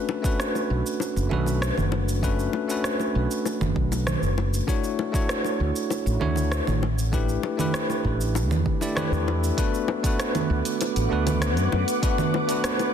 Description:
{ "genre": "sunset chillout", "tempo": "98 BPM", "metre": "4/4", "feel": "straight", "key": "D major from 9.6 s", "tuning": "A4 = 440 Hz", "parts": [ { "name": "bell-like tine electric piano", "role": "accompaniment", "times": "0.0-12.9 s", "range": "A3 to D5", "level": "-27 LUFS", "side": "moving between left 8 dB and right 6 dB", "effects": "auto-pan, digital delay" }, { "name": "bongos", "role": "percussion", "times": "0.1-12.9 s", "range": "none", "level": "-33 LUFS", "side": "left 7 dB", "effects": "none" }, { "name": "electronic kick drum", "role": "drums", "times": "0.2-12.2 s", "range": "none", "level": "-26 LUFS", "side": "equal", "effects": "none" }, { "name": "smooth R&B drum kit", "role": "drums", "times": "0.2-12.9 s", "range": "cabasa, congas, hi-hat, rim click", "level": "-28 LUFS", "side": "right 2 dB", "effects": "soft clipping on snare" }, { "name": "mellow fretless electric bass", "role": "bass", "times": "0.7-11.8 s", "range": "F#1 to F#2", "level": "-24 LUFS", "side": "equal", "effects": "wide subtle chorus" }, { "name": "ethereal airy pad", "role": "sustained chords", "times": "10.5-12.9 s", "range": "B4 to D6", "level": "-30 LUFS", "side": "right 2 dB", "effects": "ensemble chorus, built-in reverb" } ], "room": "light reverb, digital ambience", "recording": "dense, heavily limited modern master", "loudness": "-22 LUFS", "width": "side -8 dB against mid", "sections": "0.0-9.6 A section; 9.6-12.9 B section", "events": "kick drops out 9.0-9.6", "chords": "0.0 Bm9; 4.7 Dmaj9; 6.8 A9sus4; 9.6 D6" }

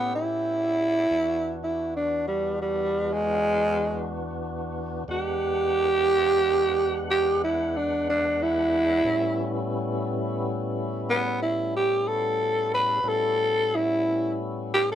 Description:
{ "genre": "blues", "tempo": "60 BPM (dotted quarters)", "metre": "12/8", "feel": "straight", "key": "unclear", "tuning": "A4 = 440 Hz", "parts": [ { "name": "growling tenor saxophone", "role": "melody", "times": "0.0-14.9 s", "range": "G3 to B4", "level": "-23 LUFS", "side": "right 1 dB", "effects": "none" }, { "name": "tonewheel organ", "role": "sustained chords", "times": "0.0-14.9 s", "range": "E2 to F#5", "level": "-31 LUFS", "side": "left 1 dB", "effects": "slow rotary speaker" } ], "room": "light reverb", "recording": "band playing live in one room", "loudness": "-23 LUFS", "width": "side -10 dB against mid", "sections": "0.0-14.9 A section", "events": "tenor saxophone solo 0.0-14.9", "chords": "0.0 A7; 1.1 E7; 9.1 A7" }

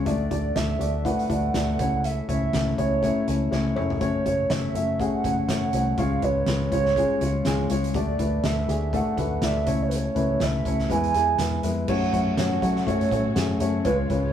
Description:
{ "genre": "piano-driven pop", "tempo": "122 BPM", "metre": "4/4", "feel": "swing 56% on 16ths", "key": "F# minor", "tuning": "A4 = 439 Hz", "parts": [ { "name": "dark grand piano", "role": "accompaniment", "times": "0.0-14.3 s", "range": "C#3 to E5", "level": "-25 LUFS", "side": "left 3 dB", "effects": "none" }, { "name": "vintage muted fingered electric bass", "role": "bass", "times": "0.0-14.3 s", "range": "E#1 to F#3", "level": "-28 LUFS", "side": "right 1 dB", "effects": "none" }, { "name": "hollow clarinet-like synth lead", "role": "melody", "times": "0.1-14.3 s", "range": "B4 to G#5", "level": "-27 LUFS", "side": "right 5 dB", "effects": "chorus" }, { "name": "loose indie drum kit", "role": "drums", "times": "0.1-14.2 s", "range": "crash cymbal, hi-hat, kick drum, snare drum, toms", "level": "-31 LUFS", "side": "right 1 dB", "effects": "none" }, { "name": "warm studio string section", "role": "sustained chords", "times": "11.9-14.3 s", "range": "C#3 to F#4", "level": "-33 LUFS", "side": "equal", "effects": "none" } ], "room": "wet studio reverb, RT60 0.6 s", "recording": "rough rehearsal-room recording", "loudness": "-21 LUFS", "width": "side -9 dB against mid", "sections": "0.0-11.9 A section; 11.9-14.3 B section", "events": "drum fill 3.5-4.0", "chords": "0.1 D; 1.8 A/C#; 4.0 F#m; 6.0 C#; 7.9 D; 9.7 A/C#; 10.9 E; 11.9 F#m" }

